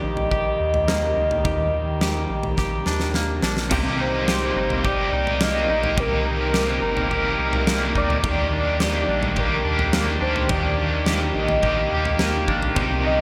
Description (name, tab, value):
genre	dream pop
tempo	106 BPM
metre	4/4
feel	straight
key	Eb major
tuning	A4 = 439 Hz
part	warm velvety synth lead	melody	0.0-13.2 s	Bb4 to Eb5	-28 LUFS	equal	chorus, digital delay
part	muted French horn section	sustained chords	0.0-13.2 s	Eb3 to Bb4	-31 LUFS	equal	none
part	semi-hollow electric guitar	arpeggios	0.0-13.2 s	C3 to G4	-30 LUFS	equal	subtle chorus, digital delay
part	round analog bass	bass	0.0-13.2 s	G1 to Eb2	-30 LUFS	equal	none
part	huge arena drum kit	drums	0.2-12.9 s	crash cymbal, kick drum, snare drum, toms	-28 LUFS	equal	gated reverb
part	overdriven electric guitar	accompaniment	3.7-13.2 s	C3 to G4	-28 LUFS	equal	tremolo, lush chorus
room	moderate plate reverb, RT60 1.8 s, studio ambience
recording	bright 1980s-style digital production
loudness	-22 LUFS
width	mono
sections	0.0-3.7 A section; 3.7-13.2 A section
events	drum fill 2.6-3.7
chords	0.0 Ebmaj7; 3.7 Cm7; 8.2 Ebmaj7